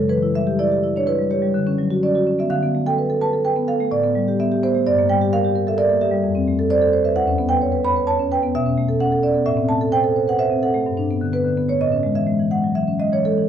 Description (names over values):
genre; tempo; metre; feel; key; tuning
classical, contemporary piece for solo marimba; 128 BPM; 5/4; rubato; unclear; A4 = 441 Hz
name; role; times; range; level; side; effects
marimba with soft mallets; solo; 0.0-13.5 s; E2 to B5; -17 LUFS; right 1 dB; none
room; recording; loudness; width
moderate studio reverb, RT60 0.8 s; dark, warm production; -17 LUFS; side -9 dB against mid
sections
0.0-13.5 A section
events
none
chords
0.1 Em7; 1.6 Dmaj7; 2.5 D5; 3.9 Asus2; 4.8 Gm; 6.2 F; 7.2 E5; 8.5 Bsus2; 9.5 Am; 10.9 G; 11.8 Amaj7